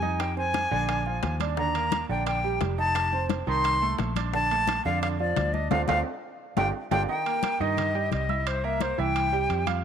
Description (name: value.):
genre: latin, salsa.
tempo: 174 BPM.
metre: 4/4.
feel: straight.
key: C minor.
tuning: A4 = 442 Hz.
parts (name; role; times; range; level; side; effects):
bright silver concert flute; melody; 0.0-9.7 s; C5 to C6; -27 LUFS; left 2 dB; none.
bright baby grand piano; accompaniment; 0.0-9.8 s; D3 to F6; -31 LUFS; right 12 dB; none.
fingered electric bass; bass; 0.0-9.8 s; F1 to G2; -30 LUFS; left 1 dB; none.
congas; percussion; 0.0-9.8 s; none; -35 LUFS; left 12 dB; none.
bongos; percussion; 0.2-7.0 s; none; -34 LUFS; left 12 dB; none.
timbales; percussion; 0.2-9.8 s; none; -36 LUFS; right 12 dB; none.
room: light reverb, studio reverb.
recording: 1960s-style stereo with parts hard left and right.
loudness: -24 LUFS.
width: side -8 dB against mid.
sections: 0.0-7.1 A section; 7.1-9.8 A section.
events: drum fill 5.7-7.1; band accent 5.7-7.1.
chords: 0.2 Fm7; 0.9 Bb7; 1.6 Ebmaj7; 3.0 F7; 4.3 Bbmaj7; 5.7 Dm7; 6.4 G5; 7.1 Cm7; 8.5 C7.